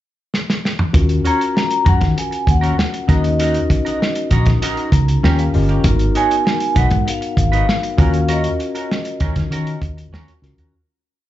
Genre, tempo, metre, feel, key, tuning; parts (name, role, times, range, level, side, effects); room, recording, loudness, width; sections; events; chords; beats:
lush 1970s-style soul; 98 BPM; 4/4; straight; Eb minor; A4 = 440 Hz
warm soul drum kit; drums; 0.3-10.7 s; hi-hat, kick drum, snare drum, toms; -19 LUFS; equal
mellow tine electric piano; accompaniment; 0.9-10.8 s; Cb4 to Bb5; -23 LUFS; left 4 dB; fast stereo tremolo, slapback echo
vintage muted fingered electric bass; bass; 0.9-10.7 s; G1 to Eb3; -16 LUFS; equal
semi-hollow electric guitar; riff; 1.2-10.7 s; Db4 to Db5; -26 LUFS; right 6 dB; vibrato effect, slapback echo
vibraphone with soft mallets; melody; 1.3-10.1 s; Eb5 to Bb5; -21 LUFS; equal; slapback echo
studio reverb; live gig heard through the venue's PA, club reverb, nothing above 7.7 kHz; -14 LUFS; side -13 dB against mid
0.0-0.9 pickup bar; 0.9-10.7 A section
drum fill 0.3-0.9; tine electric piano fill 4.6-5.8; fade-out 8.3-10.7
0.0 N.C.; 0.9 Ebm7; 3.1 Gb6; 5.2 Eb7; 5.8 Abm7; 8.0 Ebm7
0.32 | 0.94 1.55 2.16 2.78 | 3.39 4.00 4.62 5.23 | 5.84 6.46 7.07 7.68 | 8.29 8.90 9.51 10.12